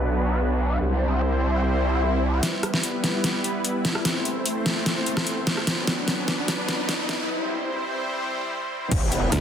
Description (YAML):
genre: heavy wobble dubstep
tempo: 148 BPM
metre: 4/4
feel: half-time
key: E minor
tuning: A4 = 441 Hz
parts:
  - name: supersaw pad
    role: sustained chords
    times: 0.0-9.4 s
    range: F#3 to C5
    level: -26 LUFS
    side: equal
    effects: sidechain pumping
  - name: growl bass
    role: bass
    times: 0.0-2.4, 8.9-9.3 s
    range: E1 to C2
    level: -23 LUFS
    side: equal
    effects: distortion, chorus, overdrive
  - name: swell, riser and impact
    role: sound effects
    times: 1.8-9.4 s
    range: none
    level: -32 LUFS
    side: left 1 dB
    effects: none
  - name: dubstep drum kit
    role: drums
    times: 2.4-9.4 s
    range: crash cymbal, hi-hat, rim click, snare drum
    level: -25 LUFS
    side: equal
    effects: overdrive
  - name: electronic kick drum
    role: drums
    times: 8.9-9.0 s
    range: none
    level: -25 LUFS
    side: equal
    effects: overdrive
  - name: snarling distorted saw bass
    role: bass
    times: 9.3-9.4 s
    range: D2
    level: -20 LUFS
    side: right 1 dB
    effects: distortion, overdrive
room: moderate lush hall reverb, RT60 2.0 s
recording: dense, heavily limited modern master, high-pass filter, low-pass filter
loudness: -22 LUFS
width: side -8 dB against mid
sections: 0.0-2.4 A section; 2.4-8.9 B section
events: filter sweep 0.0-2.4; swell 1.8-2.4; build-up 2.4-8.9; drum fill 2.4-7.3; riser 2.4-7.3; break 7.3-8.9; impact 8.9-9.4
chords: 0.0 Bm; 0.8 C; 2.4 Em; 4.0 Am; 5.7 Bm; 7.3 C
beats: 0.00 0.40 | 0.81 1.21 1.62 2.02 | 2.43 2.83 3.24 3.65 | 4.05 4.46 4.86 5.27 | 5.67 6.08 6.48 6.89 | 7.29 7.70 8.10 8.51 | 8.91 9.32